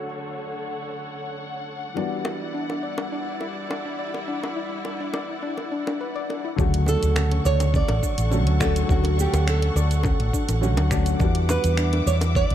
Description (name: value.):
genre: sunset chillout.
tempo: 104 BPM.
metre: 4/4.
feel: straight.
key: unclear.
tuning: A4 = 440 Hz.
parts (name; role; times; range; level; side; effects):
flamenco guitar; melody; 0.0-1.6, 6.9-12.5 s; F#4 to D5; -28 LUFS; right 5 dB; tape echo.
dark concert grand piano; accompaniment; 0.0-12.5 s; C#3 to F#4; -30 LUFS; moving between left 7 dB and right 3 dB; auto-pan, vintage 12-bit sampler grit, low-pass filter, tape echo.
warm studio string section; sustained chords; 0.0-12.5 s; D3 to D6; -32 LUFS; left 1 dB; vintage 12-bit sampler grit, low-pass filter.
soft round pluck; arpeggios; 2.0-12.5 s; C#4 to D5; -33 LUFS; left 2 dB; chorus, cassette tape, tape echo.
bongos; percussion; 2.0-12.3 s; none; -33 LUFS; left 1 dB; none.
woody fretless electric bass; bass; 6.6-12.5 s; A1 to E2; -21 LUFS; equal; tube saturation.
electronic kick drum; drums; 6.6-12.5 s; none; -24 LUFS; equal; overdrive, studio reverb.
smooth R&B drum kit; drums; 6.6-12.5 s; cabasa, finger snaps, hi-hat; -32 LUFS; right 2 dB; studio reverb.
room: light reverb, studio ambience.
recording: dark, warm production.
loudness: -21 LUFS.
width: side -11 dB against mid.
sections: 0.0-6.6 A section; 6.6-12.5 B section.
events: filter sweep on grand piano 0.0-6.6.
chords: 0.0 Dmaj7; 2.0 Em9; 6.6 Dmaj7; 11.2 Em9.